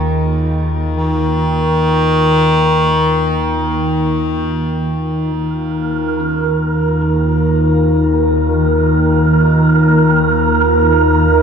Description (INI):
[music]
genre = dark ambient drone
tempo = free time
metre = none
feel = none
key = unclear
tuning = A4 = 444 Hz
[part]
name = clear bass clarinet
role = melody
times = 0.0-4.2 s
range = Eb3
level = -16 LUFS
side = equal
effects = shimmer reverb, ping-pong delay
[part]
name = granular cloud pad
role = sustained chords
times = 0.0-11.4 s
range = Eb3 to F4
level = -26 LUFS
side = right 2 dB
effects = built-in reverb, shimmer reverb
[part]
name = dark detuned synth bell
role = arpeggios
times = 0.0-11.4 s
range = Bb3 to Db4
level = -35 LUFS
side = right 2 dB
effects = none
[part]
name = analog drone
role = drone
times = 0.0-11.4 s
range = Eb2 to Eb3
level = -14 LUFS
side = left 1 dB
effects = chorus
[part]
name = wind-like tuned noise texture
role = texture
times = 5.8-11.4 s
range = Bb4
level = -16 LUFS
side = right 3 dB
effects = built-in reverb, shimmer reverb
[sound]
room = wet cathedral reverb, RT60 5.8 s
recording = none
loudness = -12 LUFS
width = side -6 dB against mid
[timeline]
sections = 0.0-5.3 A section; 5.3-11.4 B section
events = none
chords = 0.0 Ebsus2